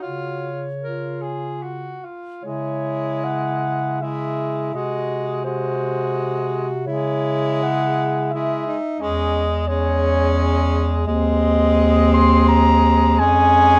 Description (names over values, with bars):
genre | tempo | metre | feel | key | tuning
classical, lyrical piece for single-reed quartet | 69-90 BPM | 3/4 | rubato | C# minor | A4 = 440 Hz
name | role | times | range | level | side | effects
dark clarinet | melody | 0.0-13.8 s | B#4 to C6 | -24 LUFS | equal | none
clear alto saxophone | second line | 0.0-13.8 s | C4 to Gb4 | -28 LUFS | equal | none
warm tenor saxophone | accompaniment | 0.0-13.8 s | G#3 to Bb4 | -28 LUFS | equal | none
dark bass clarinet | bass | 0.0-13.8 s | Eb2 to C#3 | -23 LUFS | equal | none
room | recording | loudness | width
moderate studio ambience, RT60 0.5 s | none | -20 LUFS | mono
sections
0.0-2.4 A section; 2.4-13.8 B section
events
none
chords
0.0 Db; 2.4 C#m; 4.7 G#7/B#; 6.9 C#m; 9.0 C#m/E; 11.1 Ab/Eb; 13.2 Db/F